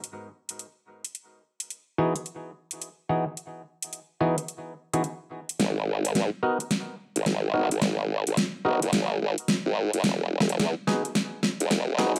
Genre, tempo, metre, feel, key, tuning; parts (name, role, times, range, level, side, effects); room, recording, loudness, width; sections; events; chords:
glitch hop; 108 BPM; 4/4; swing 63% on 16ths; G# minor; A4 = 442 Hz
dubstep drum kit; drums; 0.0-12.2 s; hi-hat, snare drum; -30 LUFS; equal
clav; stabs; 2.0-12.1 s; E3 to A#4; -30 LUFS; equal; phaser, delay
formant-sweep wobble bass; bass; 5.6-12.2 s; E1 to E2; -28 LUFS; equal; chorus, overdrive, high-pass filter
wet studio reverb, RT60 0.5 s; dark, warm production, high-pass filter; -27 LUFS; mono
0.0-5.6 A section; 5.6-12.2 B section
build-up 5.6-12.2; drum fill 5.6-12.2
0.0 N.C.; 1.2 Emaj7; 5.6 G#7(no3); 10.0 Emaj7